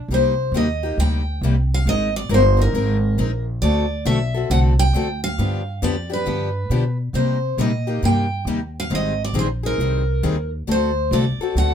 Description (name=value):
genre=acoustic string swing (jazz manouche)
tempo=136 BPM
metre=4/4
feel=swing 64% on 8ths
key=C minor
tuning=A4 = 440 Hz
part: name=upright bass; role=bass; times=0.0-11.7 s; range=G1 to C3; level=-20 LUFS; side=right 1 dB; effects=none
part: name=picked steel-string acoustic guitar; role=melody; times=0.1-11.7 s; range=Bb4 to G5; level=-23 LUFS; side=equal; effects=none
part: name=picked steel-string acoustic guitar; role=accompaniment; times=0.1-11.7 s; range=C3 to Bb4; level=-23 LUFS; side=left 3 dB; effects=none
room=light reverb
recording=minimal, uncompressed stereo recording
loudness=-18 LUFS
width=side -8 dB against mid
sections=0.1-11.7 A section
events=none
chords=0.1 Cm7; 1.9 Abadd9; 3.6 D7; 5.4 G7; 7.2 Cm7; 8.9 Abmaj7; 10.7 D7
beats=| 0.10 0.54 0.98 1.43 | 1.86 2.31 2.75 3.19 | 3.63 4.07 4.51 4.95 | 5.39 5.83 6.27 6.71 | 7.15 7.59 8.03 8.47 | 8.91 9.36 9.80 10.24 | 10.68 11.12 11.56